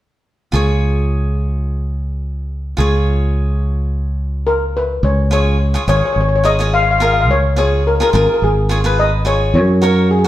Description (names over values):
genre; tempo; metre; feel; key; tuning
calypso; 106 BPM; 4/4; swing 54% on 16ths; unclear; A4 = 440 Hz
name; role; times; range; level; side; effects
cavaquinho; accompaniment; 0.5-10.3 s; E#4 to C#5; -20 LUFS; right 1 dB; none
fingered electric bass; bass; 0.5-10.3 s; G#1 to F#2; -15 LUFS; equal; none
steel pan; melody; 4.5-10.3 s; G#4 to E#5; -16 LUFS; left 3 dB; none
room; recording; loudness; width
wet stone room reverb, RT60 1.2 s; band playing live in one room; -13 LUFS; side -14 dB against mid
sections
0.5-5.0 A section; 5.0-10.3 B section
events
none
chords
0.5 C#; 9.5 F#